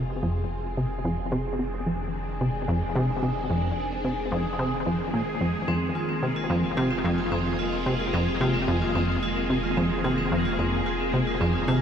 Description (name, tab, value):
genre	ambient, sequencer-driven space music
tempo	110 BPM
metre	4/4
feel	straight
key	F dorian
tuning	A4 = 440 Hz
part	phased string machine	sustained chords	0.0-11.8 s	Eb3 to Ab4	-31 LUFS	equal	ensemble chorus, phaser, shimmer reverb
part	plucky analog bass	riff	0.0-11.8 s	F2 to C3	-26 LUFS	equal	ping-pong delay, shimmer reverb
part	warm sub bass	bass	0.0-11.8 s	F1	-36 LUFS	equal	none
part	bubbling stepped-filter texture	texture	0.0-11.8 s	Ab4	-34 LUFS	right 1 dB	chorus, built-in reverb, shimmer reverb
part	vibraphone with hard mallets	arpeggios	5.7-11.7 s	C4 to F4	-31 LUFS	equal	auto-pan, ping-pong delay, shimmer reverb
room	moderate huge ambient reverb, RT60 8.4 s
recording	none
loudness	-24 LUFS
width	side -8 dB against mid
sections	0.0-11.8 A section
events	fade-in on string machine 0.0-11.8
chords	0.0 Fm7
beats	0.23 0.77 | 1.32 1.86 2.41 2.95 | 3.50 4.04 4.59 5.13 | 5.68 6.23 6.77 7.32 | 7.86 8.41 8.95 9.50 | 10.04 10.59 11.13 11.68